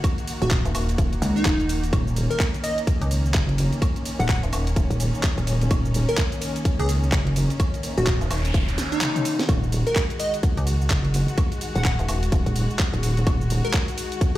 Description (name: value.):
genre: bass house.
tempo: 127 BPM.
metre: 4/4.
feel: swing 60% on 16ths.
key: Eb minor.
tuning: A4 = 439 Hz.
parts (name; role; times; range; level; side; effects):
muted studio string section; sustained chords; 0.0-14.4 s; Eb3 to Gb4; -31 LUFS; equal; sidechain pumping.
electronic kick drum; drums; 0.0-14.3 s; none; -22 LUFS; equal; none.
garage drum kit; drums; 0.0-14.4 s; cabasa, handclaps, hi-hat, ride cymbal, snare drum, toms, woodblock; -30 LUFS; equal; none.
plucky unison lead; melody; 0.4-14.4 s; Eb4 to Gb5; -28 LUFS; equal; ping-pong delay.
metallic wobble bass; bass; 0.4-13.6 s; Eb1 to Db2; -22 LUFS; equal; chorus, tube saturation, sidechain pumping.
metallic FM bass; bass; 0.7-14.4 s; Eb1 to Db2; -23 LUFS; equal; overdrive, sidechain pumping.
noise sweep; sound effects; 7.7-9.5 s; none; -34 LUFS; right 1 dB; none.
room: little or no reverb.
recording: played on a big sound system in a bare room, large studio reverb.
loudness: -20 LUFS.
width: side -15 dB against mid.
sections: 0.0-14.4 A section.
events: noise sweep 7.7-9.5; drum fill 8.8-9.5; kick drops out 9.0-9.5.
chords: 0.0 Ebm.